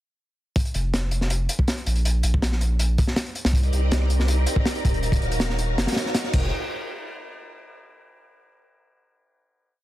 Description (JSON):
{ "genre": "drum and bass, jungle", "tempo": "161 BPM", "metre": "4/4", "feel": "straight", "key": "unclear", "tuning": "A4 = 440 Hz", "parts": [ { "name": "crunchy breakbeat drum kit", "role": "drums", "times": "0.6-6.4 s", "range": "crash cymbal, hi-hat, kick drum, snare drum", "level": "-24 LUFS", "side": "equal", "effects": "none" }, { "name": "saturated sub bass", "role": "bass", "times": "0.7-6.5 s", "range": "Eb1 to C2", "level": "-22 LUFS", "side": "equal", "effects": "none" }, { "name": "soft string machine", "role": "sustained chords", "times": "3.5-6.5 s", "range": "C4 to G5", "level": "-30 LUFS", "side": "equal", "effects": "ensemble chorus" }, { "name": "wind-like tuned noise texture", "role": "texture", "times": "4.0-6.5 s", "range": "Bb4 to Bb5", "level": "-37 LUFS", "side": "left 2 dB", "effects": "built-in reverb" } ], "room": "small room ambience", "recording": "dense, heavily limited modern master", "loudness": "-20 LUFS", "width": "side -15 dB against mid", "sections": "0.6-6.5 drop; 6.5-8.0 final hit", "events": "drop 0.6-6.5", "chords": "0.6 Fsus4; 2.0 N.C.; 3.5 Cm9; 5.0 Ebm9; 6.3 Fm9; 6.5 N.C." }